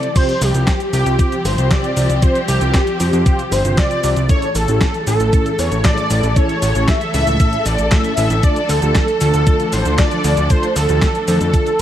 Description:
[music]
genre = italo disco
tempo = 116 BPM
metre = 4/4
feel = straight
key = unclear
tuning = A4 = 441 Hz
[part]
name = wide unison lead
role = melody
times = 0.0-11.8 s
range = G4 to E5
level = -19 LUFS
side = equal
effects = ensemble chorus, tape echo
[part]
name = warm symphonic string section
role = sustained chords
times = 0.0-11.8 s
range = C#3 to A4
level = -24 LUFS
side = left 1 dB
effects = none
[part]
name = mellow synth brass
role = stabs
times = 0.0-11.7 s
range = A2 to C5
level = -23 LUFS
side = right 1 dB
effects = chorus
[part]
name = clean 12-bit digital drum machine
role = drums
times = 0.0-11.8 s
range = cabasa, crash cymbal, handclaps, hi-hat, snare drum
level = -23 LUFS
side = equal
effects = small room reverb
[part]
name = electronic kick drum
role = drums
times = 0.2-11.6 s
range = none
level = -15 LUFS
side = equal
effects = small room reverb
[part]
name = fat analog bass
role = bass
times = 0.4-11.5 s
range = G1 to F2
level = -17 LUFS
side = equal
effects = none
[sound]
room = light reverb, digital ambience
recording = vinyl crackle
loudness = -13 LUFS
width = side -11 dB against mid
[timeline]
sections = 0.2-11.8 A section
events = break 0.0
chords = 0.2 Csus4; 4.3 A; 8.4 Dm

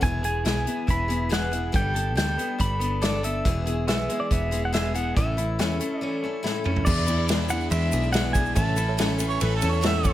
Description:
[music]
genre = folk rock and heartland rock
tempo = 141 BPM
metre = 4/4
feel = straight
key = E mixolydian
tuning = A4 = 441 Hz
[part]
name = pedal steel guitar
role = melody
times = 0.0-9.2 s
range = D5 to B5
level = -29 LUFS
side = right 1 dB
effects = none
[part]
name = picked steel-string acoustic guitar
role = accompaniment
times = 0.0-10.1 s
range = E2 to A4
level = -31 LUFS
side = left 5 dB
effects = none
[part]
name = electric guitar through a small old amp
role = riff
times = 0.0-10.1 s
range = E2 to A4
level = -32 LUFS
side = equal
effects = none
[part]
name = picked electric bass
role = bass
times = 0.0-10.1 s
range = E1 to E2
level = -26 LUFS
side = equal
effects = none
[part]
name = natural country drum kit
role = drums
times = 0.0-10.1 s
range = crash cymbal, hi-hat, kick drum, ride cymbal, snare drum, toms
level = -26 LUFS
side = equal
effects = none
[part]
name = reed electric piano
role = accompaniment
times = 6.9-10.1 s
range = G#4 to F#5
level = -36 LUFS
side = right 7 dB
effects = fast tremolo
[part]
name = egg shaker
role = percussion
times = 6.9-10.1 s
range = none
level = -40 LUFS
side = left 12 dB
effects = none
[part]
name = mellow harmonica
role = second line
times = 9.3-10.1 s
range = A4 to E5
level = -27 LUFS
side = right 6 dB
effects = none
[sound]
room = light reverb, small room ambience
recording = none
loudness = -22 LUFS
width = side -13 dB against mid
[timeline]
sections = 0.0-6.9 A section; 6.9-10.1 B section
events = drum fill 6.4-6.9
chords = 0.0 E; 1.7 Gadd9; 3.5 E; 5.2 A; 6.9 E7; 8.6 A

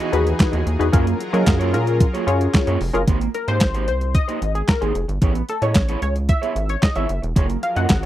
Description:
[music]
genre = early-eighties boogie funk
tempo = 112 BPM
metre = 4/4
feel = straight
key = Ab major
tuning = A4 = 440 Hz
[part]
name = lush unison pad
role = sustained chords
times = 0.0-3.1, 7.4-8.1 s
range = E3 to Bb4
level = -29 LUFS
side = equal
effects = chorus
[part]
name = electric guitar at the edge of break-up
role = riff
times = 0.0-8.1 s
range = Bb3 to D#5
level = -27 LUFS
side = right 6 dB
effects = lush chorus
[part]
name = clean 12-bit digital drum machine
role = drums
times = 0.0-8.1 s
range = handclaps, hi-hat, kick drum, snare drum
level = -17 LUFS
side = equal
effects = overdrive
[part]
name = funky polysynth comp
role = accompaniment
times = 0.1-8.1 s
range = Db4 to Gb5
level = -23 LUFS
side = left 2 dB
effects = chorus
[part]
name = rubbery square bass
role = bass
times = 0.1-8.1 s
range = E1 to Gb3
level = -21 LUFS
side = equal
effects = none
[sound]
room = little or no reverb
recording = dry, close 1970s-style studio recording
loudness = -17 LUFS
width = side -13 dB against mid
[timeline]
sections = 0.0-3.1 A section; 3.1-8.1 B section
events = analog polysynth solo 3.1-8.1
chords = 0.0 Emaj9; 0.9 Gbmaj9; 3.1 Abmaj9; 5.2 Amaj9; 7.4 Gbmaj9

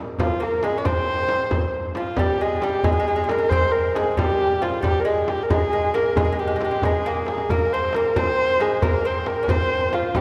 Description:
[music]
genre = Persian modal ensemble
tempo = 90 BPM (dotted quarters)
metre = 6/8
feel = straight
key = C dastgah homayun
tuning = A4 = 439 Hz
[part]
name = dark kamancheh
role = melody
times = 0.2-10.2 s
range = F4 to D5-50c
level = -24 LUFS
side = equal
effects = none
[part]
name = lute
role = second line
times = 0.2-10.2 s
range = F3 to Db4+45c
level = -30 LUFS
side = equal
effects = none
[part]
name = frame drum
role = percussion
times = 0.2-10.2 s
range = none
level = -30 LUFS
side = equal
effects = none
[part]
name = tombak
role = percussion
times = 0.2-10.2 s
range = none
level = -30 LUFS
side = equal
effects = none
[sound]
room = wet church reverb, RT60 3.4 s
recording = recorded in a church or concert hall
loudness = -21 LUFS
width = mono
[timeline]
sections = 0.0-2.2 A section; 2.2-10.2 B section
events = drum fill 7.1-7.5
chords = none

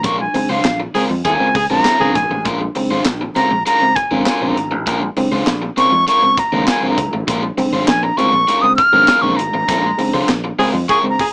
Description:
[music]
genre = funk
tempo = 100 BPM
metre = 4/4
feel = straight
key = Bb minor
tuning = A4 = 440 Hz
[part]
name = breathy silver concert flute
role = melody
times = 0.0-11.3 s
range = F5 to F6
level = -14 LUFS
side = equal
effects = none
[part]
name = raw garage guitar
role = accompaniment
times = 0.0-11.2 s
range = Ab3 to C5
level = -21 LUFS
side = left 1 dB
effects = overdrive
[part]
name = reed electric piano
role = stabs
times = 0.0-11.3 s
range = Bb2 to C4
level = -21 LUFS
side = right 1 dB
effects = fast tremolo
[part]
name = fingered electric bass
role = bass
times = 0.0-11.2 s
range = Ab1 to F2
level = -24 LUFS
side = equal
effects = none
[part]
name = crisp fusion drum kit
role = drums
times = 0.0-11.3 s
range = handclaps, hi-hat, kick drum, snare drum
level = -21 LUFS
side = equal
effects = none
[part]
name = congas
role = percussion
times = 0.0-11.2 s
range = none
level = -25 LUFS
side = equal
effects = none
[part]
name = warm tenor saxophone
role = second line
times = 0.9-2.4, 10.6-11.3 s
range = Ab4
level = -18 LUFS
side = equal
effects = none
[sound]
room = light reverb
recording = small speaker sound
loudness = -13 LUFS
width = side -29 dB against mid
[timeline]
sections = 0.0-11.3 A section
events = flute solo 0.0-11.3; band accent 0.0-2.5, 9.7-11.3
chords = 0.0 Bbm7

